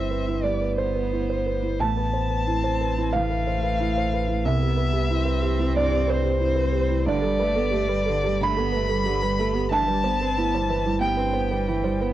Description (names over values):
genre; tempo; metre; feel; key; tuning
neoclassical piano and strings; 91 BPM; 4/4; rubato; C major; A4 = 440 Hz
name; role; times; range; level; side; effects
warm violin; melody; 0.0-12.0 s; C5 to B5; -28 LUFS; left 4 dB; cassette tape
rich cello; second line; 0.0-12.1 s; D3 to C4; -30 LUFS; right 5 dB; cassette tape
felt-muted upright piano; accompaniment; 0.0-12.1 s; C2 to B5; -25 LUFS; right 4 dB; cassette tape
sub bass with octave; bass; 0.0-12.1 s; G1 to C2; -27 LUFS; left 2 dB; none
room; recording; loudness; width
light reverb; home recording on cassette; -21 LUFS; side -13 dB against mid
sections
0.0-12.1 A section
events
none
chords
0.0 Cmaj7/G; 1.8 Amadd9; 4.4 Cmaj7; 7.1 Gadd9; 9.7 Cmaj7/G